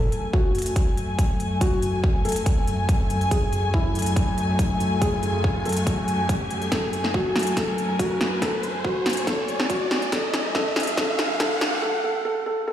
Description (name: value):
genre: heavy wobble dubstep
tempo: 141 BPM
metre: 4/4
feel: half-time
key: F# minor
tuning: A4 = 441 Hz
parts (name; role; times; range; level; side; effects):
- felt-muted upright piano; melody; 0.0-12.7 s; E4 to A4; -28 LUFS; equal; low-pass filter, tape echo
- warm studio string section; sustained chords; 0.0-11.8 s; F#2 to G#5; -26 LUFS; left 1 dB; sidechain pumping, low-pass filter
- riser and reverse cymbal; sound effects; 1.7-12.7 s; none; -31 LUFS; right 1 dB; none
- big-room dance drum kit; drums; 0.1-11.7 s; hi-hat, snare drum; -27 LUFS; equal; none
- electronic kick drum; drums; 0.3-11.5 s; none; -24 LUFS; equal; none
room: moderate lush hall reverb, RT60 2.0 s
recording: played on a big sound system in a bare room, stone room reverb, high-pass filter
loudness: -21 LUFS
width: side -10 dB against mid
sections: 0.0-12.7 A section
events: build-up 0.0-12.7; filter sweep on string section 0.0-12.7; filter sweep on felt piano 0.0-12.7; filter sweep 0.0-12.7; riser 1.7-11.8; drum fill 6.7-11.8; break 11.8-12.7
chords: 0.0 F#madd9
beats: 0.34 0.76 1.19 | 1.61 2.04 2.46 2.89 | 3.31 3.74 4.17 4.59 | 5.02 5.44 5.87 6.29 | 6.72 7.14 7.57 8.00 | 8.42 8.85 9.27 9.70 | 10.12 10.55 10.97 11.40 | 11.82 12.25 12.68